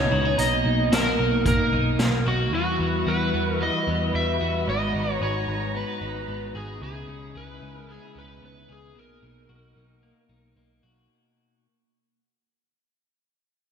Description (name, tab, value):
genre	dream pop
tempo	112 BPM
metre	4/4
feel	straight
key	B major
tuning	A4 = 440 Hz
part	overdriven slide guitar	melody	0.0-10.5 s	F#4 to E5	-27 LUFS	equal	lush chorus, digital delay
part	dark studio string section	sustained chords	0.0-11.1 s	B2 to A#5	-29 LUFS	right 2 dB	none
part	electric guitar at the edge of break-up	arpeggios	0.0-11.7 s	G#2 to G#4	-30 LUFS	left 3 dB	analog chorus, digital delay
part	vintage muted picked electric bass	bass	0.0-11.1 s	G#1 to E2	-28 LUFS	right 1 dB	none
part	raw garage drum kit	drums	0.4-2.1 s	hi-hat, kick drum, snare drum	-27 LUFS	right 1 dB	gated reverb
part	soft synth bell	texture	0.4-2.0 s	A#5	-39 LUFS	equal	chorus, digital delay
room	wet lush hall reverb, RT60 1.9 s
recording	bright 1980s-style digital production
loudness	-21 LUFS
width	side -7 dB against mid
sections	0.0-11.1 A section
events	fade-out 0.0-11.1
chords	0.4 Bmaj7; 2.5 Emadd9; 4.7 G#m7; 6.8 C#m7; 9.0 Bmaj7